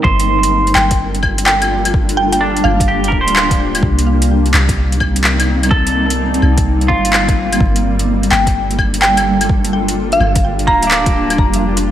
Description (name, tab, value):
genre	future garage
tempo	127 BPM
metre	4/4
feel	swing 65% on 16ths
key	G minor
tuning	A4 = 441 Hz
part	semi-hollow electric guitar	accompaniment	0.0-7.8, 10.7-11.8 s	Bb3 to C5	-18 LUFS	right 2 dB	vintage 12-bit sampler grit, sidechain pumping, analog delay
part	soft 808-style bass	bass	0.0-11.9 s	D1 to C2	-17 LUFS	equal	none
part	electronic kick drum	drums	0.0-11.5 s	none	-17 LUFS	equal	overdrive
part	granular cloud pad	sustained chords	0.1-11.9 s	G3 to C5	-18 LUFS	equal	built-in reverb, wide subtle chorus, sidechain pumping
part	deep house drum kit	drums	0.2-11.8 s	claves, handclaps, hi-hat	-18 LUFS	left 1 dB	overdrive
part	mallet-like synth pluck	melody	0.8-3.0, 8.3-11.1 s	F5 to Bb5	-18 LUFS	equal	chorus, ping-pong delay
room	moderate lush hall reverb, RT60 1.8 s, digital ambience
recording	dreamy mix soaked in reverb, vinyl crackle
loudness	-11 LUFS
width	side -11 dB against mid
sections	0.0-11.9 A section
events	none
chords	0.0 Gm9; 3.8 Cm7; 7.6 Gm9; 11.4 F